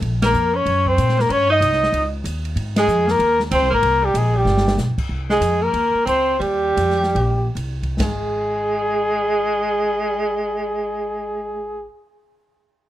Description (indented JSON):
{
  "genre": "jazz, small-group swing and bop",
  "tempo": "132-190 BPM",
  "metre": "4/4",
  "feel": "swing 63% on 8ths",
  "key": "unclear",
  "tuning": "A4 = 441 Hz",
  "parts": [
    { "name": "upright bass", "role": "bass", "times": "0.0-11.9 s", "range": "G1 to Bb2", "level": "-22 LUFS", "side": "equal", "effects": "none" },
    { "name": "open jazz drum kit", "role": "drums", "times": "0.0-8.1 s", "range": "crash cymbal, hi-hat, kick drum, ride cymbal, snare drum", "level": "-27 LUFS", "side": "equal", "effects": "none" },
    { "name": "clear tenor saxophone", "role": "second line", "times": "0.2-11.9 s", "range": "G3 to Eb4", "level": "-24 LUFS", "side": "right 4 dB", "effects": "none" },
    { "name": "warm flugelhorn", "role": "melody", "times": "0.3-11.9 s", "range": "G4 to Eb5", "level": "-19 LUFS", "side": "left 1 dB", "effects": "plate reverb" }
  ],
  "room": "light reverb",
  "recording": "none",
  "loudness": "-17 LUFS",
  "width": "side -13 dB against mid",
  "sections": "0.0-5.1 A section; 5.1-8.0 B section; 8.0-11.6 C section",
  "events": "band accent 0.2, 2.7; drum fill 4.5-4.8; slowing down 5.1-8.0",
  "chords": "0.0 Gbmaj7; 1.3 Eb7; 2.6 Abadd9; 4.5 G; 5.1 Cm7; 6.4 Eb69; 8.0 N.C."
}